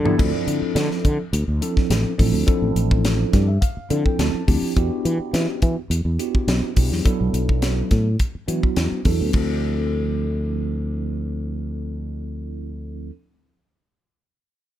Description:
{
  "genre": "electric jazz fusion",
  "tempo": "105 BPM",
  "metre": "4/4",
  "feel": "straight",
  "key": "D dorian",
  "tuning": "A4 = 442 Hz",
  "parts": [
    { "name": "tine electric piano", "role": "accompaniment", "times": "0.0-13.1 s", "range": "F3 to A5", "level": "-25 LUFS", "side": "right 1 dB", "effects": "slow stereo tremolo, phaser" },
    { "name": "sustaining fretless electric bass", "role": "bass", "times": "0.0-13.1 s", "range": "A1 to E3", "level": "-22 LUFS", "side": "equal", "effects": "none" },
    { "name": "crisp fusion drum kit", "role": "drums", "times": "0.1-9.5 s", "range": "crash cymbal, hi-hat, kick drum, snare drum, toms", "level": "-22 LUFS", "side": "equal", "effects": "none" }
  ],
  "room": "little or no reverb",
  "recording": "none",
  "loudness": "-19 LUFS",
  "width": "side -12 dB against mid",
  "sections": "0.2-9.3 A section; 9.3-11.6 B section",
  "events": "drum fill 0.0; tine electric piano fill 3.0-4.8",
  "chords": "0.2 Dm9; 4.8 Em9; 9.3 Dm9",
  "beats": "| 0.19 0.76 1.33 1.90 | 2.47 3.04 3.62 4.19 | 4.76 5.33 5.91 6.48 | 7.05 7.62 8.20 8.77 | 9.34 9.92 10.49 11.06"
}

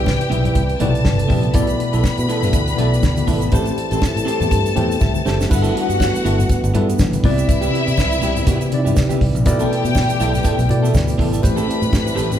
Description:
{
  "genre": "disco",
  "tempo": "121 BPM",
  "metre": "4/4",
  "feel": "swing 56% on 16ths",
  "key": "G major",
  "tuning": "A4 = 440 Hz",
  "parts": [
    { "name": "warm studio string section", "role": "second line", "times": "0.0-12.4 s", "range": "E4 to B5", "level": "-24 LUFS", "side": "left 4 dB", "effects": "none" },
    { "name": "electric guitar at the edge of break-up", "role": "accompaniment", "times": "0.0-12.4 s", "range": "B3 to A4", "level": "-25 LUFS", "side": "right 3 dB", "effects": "none" },
    { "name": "mellow tine electric piano", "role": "accompaniment", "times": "0.0-12.4 s", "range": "B2 to G5", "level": "-22 LUFS", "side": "left 1 dB", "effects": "medium stereo tremolo" },
    { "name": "mellow French horn section", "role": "sustained chords", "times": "0.0-12.4 s", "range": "E3 to B4", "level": "-27 LUFS", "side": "right 2 dB", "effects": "none" },
    { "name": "fingered electric bass", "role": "bass", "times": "0.0-12.4 s", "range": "F#1 to C3", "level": "-21 LUFS", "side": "equal", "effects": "none" },
    { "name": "damped 70s drum kit", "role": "drums", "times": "0.1-12.4 s", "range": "crash cymbal, hi-hat, kick drum, snare drum", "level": "-20 LUFS", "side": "equal", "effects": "none" },
    { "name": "congas", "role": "percussion", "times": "0.1-12.4 s", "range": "none", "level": "-27 LUFS", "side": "left 5 dB", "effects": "none" },
    { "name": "egg shaker", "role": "percussion", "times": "1.6-12.4 s", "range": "none", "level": "-36 LUFS", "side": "right 9 dB", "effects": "none" }
  ],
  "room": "moderate large studio reverb, RT60 0.9 s",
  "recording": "band playing live in one room",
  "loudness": "-15 LUFS",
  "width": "side -10 dB against mid",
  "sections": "0.0-5.5 A section; 5.5-12.4 B section",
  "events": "tine electric piano fill 4.5-5.5; drum fill 5.0-5.5",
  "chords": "0.0 Cmaj7; 1.6 G69/B; 3.5 Am7; 5.5 G69; 7.2 Cmaj7; 9.5 G69/B; 11.4 Am7",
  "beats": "0.07 0.56 1.06 | 1.55 2.05 2.54 3.04 | 3.53 4.03 4.52 5.01 | 5.51 6.00 6.50 6.99 | 7.49 7.98 8.47 8.97 | 9.46 9.95 10.45 10.94 | 11.44 11.93"
}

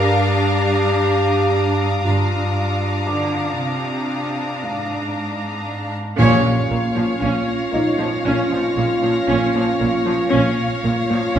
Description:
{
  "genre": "cinematic",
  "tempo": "58 BPM",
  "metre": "4/4",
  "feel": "straight",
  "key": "Bb minor from 6.2 s",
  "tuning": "A4 = 441 Hz",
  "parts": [
    { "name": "rich symphonic violin section", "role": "melody", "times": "0.0-11.4 s", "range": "F5 to Bb5", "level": "-29 LUFS", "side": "left 2 dB", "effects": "none" },
    { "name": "clear studio violin section", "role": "second line", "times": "0.0-11.4 s", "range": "Db5 to F5", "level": "-26 LUFS", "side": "left 1 dB", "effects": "none" },
    { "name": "dark clarinet", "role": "second line", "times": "0.0-5.2 s", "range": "F4 to G4", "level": "-23 LUFS", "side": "left 1 dB", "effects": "none" },
    { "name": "rich chamber viola section", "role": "accompaniment", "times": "0.0-11.4 s", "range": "F3 to D4", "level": "-24 LUFS", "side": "equal", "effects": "none" },
    { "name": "clear chamber cello section", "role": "bass", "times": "0.0-11.4 s", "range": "G2 to D3", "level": "-22 LUFS", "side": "right 1 dB", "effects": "none" },
    { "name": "warm studio violin section", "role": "texture", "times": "0.0-11.4 s", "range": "D6 to Bb6", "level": "-33 LUFS", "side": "left 3 dB", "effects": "none" },
    { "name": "rich symphonic double bass section", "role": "bass", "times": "2.0-11.4 s", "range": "G1 to Bb1", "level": "-26 LUFS", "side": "right 2 dB", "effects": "none" },
    { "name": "felt-muted upright piano", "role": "texture", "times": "3.1-11.4 s", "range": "Eb4 to D6", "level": "-29 LUFS", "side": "equal", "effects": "none" },
    { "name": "mellow French horn section", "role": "sustained chords", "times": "6.2-11.4 s", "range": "Db4 to F4", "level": "-22 LUFS", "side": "equal", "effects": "none" },
    { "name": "timpani", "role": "percussion", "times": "6.2-7.7 s", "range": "Bb2", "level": "-23 LUFS", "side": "equal", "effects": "none" }
  ],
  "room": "wet recital hall reverb, RT60 1.5 s",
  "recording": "heard from further back in the room",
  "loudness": "-17 LUFS",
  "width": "side -9 dB against mid",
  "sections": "0.0-6.2 A section; 6.2-11.4 B section",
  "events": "band accent 6.2-7.2",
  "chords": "0.0 Bbadd9/G; 6.2 Bbm",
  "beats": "1.02 | 2.05 3.09 4.12 5.16 | 6.19 7.22 8.26 9.29 | 10.33 11.36"
}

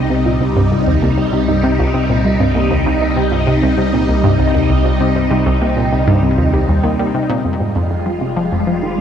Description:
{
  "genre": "ambient, sequencer-driven space music",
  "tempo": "98 BPM",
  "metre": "4/4",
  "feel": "straight",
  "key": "C minor",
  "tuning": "A4 = 440 Hz",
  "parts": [
    { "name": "phased string machine", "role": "sustained chords", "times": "0.0-9.0 s", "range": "C3 to F4", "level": "-17 LUFS", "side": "left 1 dB", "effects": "ensemble chorus, phaser" },
    { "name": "soft round pluck", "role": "arpeggios", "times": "0.0-9.0 s", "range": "G3 to G4", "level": "-20 LUFS", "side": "right 1 dB", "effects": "chorus, auto-pan, ping-pong delay" },
    { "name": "round analog bass", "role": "bass", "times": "0.0-9.0 s", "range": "F1 to C2", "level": "-22 LUFS", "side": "equal", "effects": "none" },
    { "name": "analog pluck", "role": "riff", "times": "0.1-9.0 s", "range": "C2 to G3", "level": "-17 LUFS", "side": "equal", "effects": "chorus, phaser, ping-pong delay" }
  ],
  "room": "moderate huge ambient reverb, RT60 8.2 s",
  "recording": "cassette tape",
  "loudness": "-12 LUFS",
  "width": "side -8 dB against mid",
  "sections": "0.0-7.5 A section; 7.5-9.0 B section",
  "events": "filter sweep on synth arpeggio sound 0.0-7.5, 7.5-9.0",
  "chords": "0.0 Cm; 7.5 Fmadd9",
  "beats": "| 0.10 0.72 1.33 1.94 | 2.55 3.17 3.78 4.39 | 5.00 5.61 6.23 6.84 | 7.45 8.06 8.68"
}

